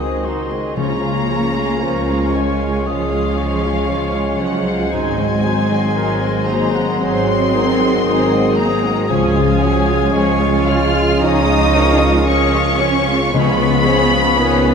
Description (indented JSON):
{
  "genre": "classical, slow romantic movement for symphony orchestra",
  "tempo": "57 BPM",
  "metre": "4/4",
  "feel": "rubato",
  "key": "Db major",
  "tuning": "A4 = 440 Hz",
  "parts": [
    { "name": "bright silver concert flute", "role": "second line", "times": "0.0-14.7 s", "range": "C6 to Eb6", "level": "-27 LUFS", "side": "left 2 dB", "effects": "none" },
    { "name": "clear clarinet", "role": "second line", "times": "0.0-14.7 s", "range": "F4 to Db5", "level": "-25 LUFS", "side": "equal", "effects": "none" },
    { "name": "warm symphonic violin section", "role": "second line", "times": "0.0-14.7 s", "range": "F4 to F5", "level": "-26 LUFS", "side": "left 3 dB", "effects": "none" },
    { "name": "mellow bassoon", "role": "accompaniment", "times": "0.0-14.7 s", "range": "Db3 to Ab3", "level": "-23 LUFS", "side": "right 2 dB", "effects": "none" },
    { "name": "warm symphonic viola section", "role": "accompaniment", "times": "0.0-14.7 s", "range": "F3 to F4", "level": "-23 LUFS", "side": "right 2 dB", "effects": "none" },
    { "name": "mellow French horn section", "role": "sustained chords", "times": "0.0-14.7 s", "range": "F3 to Db4", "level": "-22 LUFS", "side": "left 2 dB", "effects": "none" },
    { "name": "concert harp", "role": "arpeggios", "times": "0.0-14.7 s", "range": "Ab2 to Ab5", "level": "-25 LUFS", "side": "left 8 dB", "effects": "none" },
    { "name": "warm chamber double bass section", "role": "bass", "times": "0.0-14.7 s", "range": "Ab1 to Db2", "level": "-22 LUFS", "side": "right 3 dB", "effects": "none" },
    { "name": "rich symphonic violin section", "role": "melody", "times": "0.8-14.7 s", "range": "F5 to F6", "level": "-22 LUFS", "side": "left 3 dB", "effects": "none" },
    { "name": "warm symphonic cello section", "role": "bass", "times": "0.8-14.7 s", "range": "F3 to F4", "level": "-21 LUFS", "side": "right 1 dB", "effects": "none" },
    { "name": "timpani", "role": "percussion", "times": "0.8-2.3, 13.3-14.7 s", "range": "Db3", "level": "-26 LUFS", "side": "equal", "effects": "none" }
  ],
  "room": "wet scoring stage reverb, RT60 1.8 s",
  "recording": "minimal, uncompressed stereo recording",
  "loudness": "-13 LUFS",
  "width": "side -6 dB against mid",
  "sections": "0.0-14.7 A section",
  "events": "none",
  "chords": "0.0 Ab7/Db; 4.9 Ab7; 9.1 Db; 13.3 Db7"
}